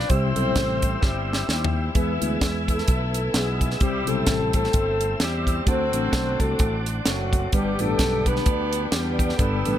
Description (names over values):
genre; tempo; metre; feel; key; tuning
uptempo gospel; 129 BPM; 4/4; swing 57% on 8ths; C major; A4 = 444 Hz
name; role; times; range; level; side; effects
mellow horn section; melody; 0.0-9.8 s; F#3 to C5; -26 LUFS; left 1 dB; slapback echo
tonewheel organ; sustained chords; 0.0-9.8 s; B4 to E6; -33 LUFS; right 1 dB; slow rotary speaker, chorus vibrato
warm studio string section; sustained chords; 0.0-9.8 s; D3 to E4; -36 LUFS; equal; none
fingered electric bass; bass; 0.0-9.8 s; F#1 to E2; -27 LUFS; equal; none
tight funk drum kit; drums; 0.0-9.7 s; hi-hat, kick drum, snare drum, toms; -24 LUFS; equal; none
mellow tine electric piano; accompaniment; 0.1-9.8 s; G2 to A4; -27 LUFS; left 2 dB; medium stereo tremolo
room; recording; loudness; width
little or no reverb; none; -20 LUFS; side -11 dB against mid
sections
0.0-9.8 A section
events
drum fill 1.0-2.0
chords
0.1 C; 2.0 E; 3.8 C; 5.7 D7; 7.5 G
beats
| 0.10 0.56 1.03 1.49 | 1.96 2.42 2.88 3.35 | 3.81 4.28 4.74 5.21 | 5.67 6.14 6.60 7.07 | 7.53 8.00 8.46 8.93 | 9.39